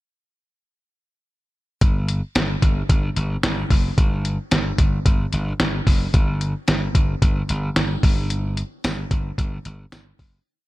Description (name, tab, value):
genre	1980s-style pop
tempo	111 BPM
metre	4/4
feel	straight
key	unclear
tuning	A4 = 441 Hz
part	glassy slap bass	bass	1.8-10.4 s	F#1 to G1	-23 LUFS	equal	none
part	lo-fi sampler-style drum kit	drums	1.8-10.3 s	hi-hat, kick drum, snare drum, tambourine	-19 LUFS	equal	none
room	little or no reverb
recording	none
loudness	-18 LUFS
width	side -18 dB against mid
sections	1.8-10.5 pre-chorus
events	fade-out 8.3-10.5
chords	none